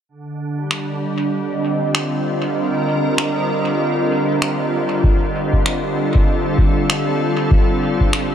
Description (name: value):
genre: ambient dub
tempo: 97 BPM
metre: 4/4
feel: swing 60% on 16ths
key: C dorian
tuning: A4 = 436 Hz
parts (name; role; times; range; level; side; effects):
- soft additive organ-like pad; sustained chords; 0.2-8.3 s; D3 to Bb4; -19 LUFS; equal; ensemble chorus, built-in reverb
- bubbling stepped-filter texture; texture; 1.0-8.3 s; Eb5; -27 LUFS; right 1 dB; chorus, built-in reverb
- electronic finger snaps; drums; 0.7-8.3 s; none; -23 LUFS; equal; overdrive, low-pass filter on snare, studio reverb, dub echo
- electronic kick drum; drums; 5.0-8.1 s; none; -16 LUFS; equal; studio reverb
room: light reverb, digital ambience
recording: none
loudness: -16 LUFS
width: side -9 dB against mid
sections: 0.1-8.3 A section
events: none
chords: 0.1 Cm7; 5.0 F7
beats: | 0.09 0.71 1.33 1.95 | 2.56 3.18 3.80 4.42 | 5.04 5.66 6.28 6.89 | 7.51 8.13